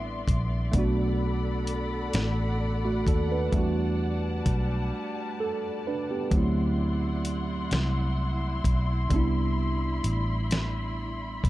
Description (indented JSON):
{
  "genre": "slow six-eight R&B",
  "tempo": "43 BPM (dotted quarters)",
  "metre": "6/8",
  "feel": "straight",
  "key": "E minor",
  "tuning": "A4 = 440 Hz",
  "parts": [
    { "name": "tine electric piano", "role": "accompaniment", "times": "0.0-11.5 s", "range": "F#3 to B4", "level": "-30 LUFS", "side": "right 2 dB", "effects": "analog chorus" },
    { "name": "muted studio string section", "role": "sustained chords", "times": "0.0-11.5 s", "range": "G3 to C6", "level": "-35 LUFS", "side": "left 3 dB", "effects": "none" },
    { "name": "vintage muted fingered electric bass", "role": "bass", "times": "0.0-11.5 s", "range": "A1 to E2", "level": "-28 LUFS", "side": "equal", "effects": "none" },
    { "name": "dusty soul sampler-style drum kit", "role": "drums", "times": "0.3-11.5 s", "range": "hi-hat, kick drum, snare drum", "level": "-27 LUFS", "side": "equal", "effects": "none" }
  ],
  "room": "light reverb",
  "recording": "dark, warm production",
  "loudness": "-25 LUFS",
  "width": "side -16 dB against mid",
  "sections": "0.0-11.5 A section",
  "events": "break 4.9-6.3",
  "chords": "0.0 Cmaj9; 0.7 Bm7; 3.5 Em11; 6.3 D9; 9.1 Cmaj9"
}